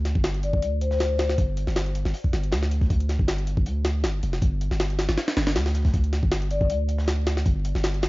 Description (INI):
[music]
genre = drum and bass, jungle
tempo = 158 BPM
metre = 4/4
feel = swing 54% on 16ths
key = unclear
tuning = A4 = 439 Hz
[part]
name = long sustained 808-style bass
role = bass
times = 0.0-8.1 s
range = F1 to D2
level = -24 LUFS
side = equal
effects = none
[part]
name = crunchy breakbeat drum kit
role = drums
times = 0.1-8.1 s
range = hi-hat, snare drum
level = -45 LUFS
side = left 2 dB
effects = none
[part]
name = jungle sampler-style drum kit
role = drums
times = 0.1-8.1 s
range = hi-hat, kick drum, snare drum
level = -25 LUFS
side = equal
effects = none
[part]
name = vibraphone with soft mallets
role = melody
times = 0.4-1.3, 6.5-6.7 s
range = C5 to D5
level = -30 LUFS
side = left 4 dB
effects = vintage 12-bit sampler grit, dub echo
[sound]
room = small room ambience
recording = dark, warm production, vinyl crackle, nothing above 7.5 kHz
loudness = -22 LUFS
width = side -20 dB against mid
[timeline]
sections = 0.0-8.1 A section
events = none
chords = 0.0 G5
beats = 0.24 0.62 1.00 | 1.38 1.76 2.14 2.52 | 2.90 3.28 3.66 4.04 | 4.42 4.80 5.18 5.56 | 5.94 6.32 6.70 7.08 | 7.46 7.84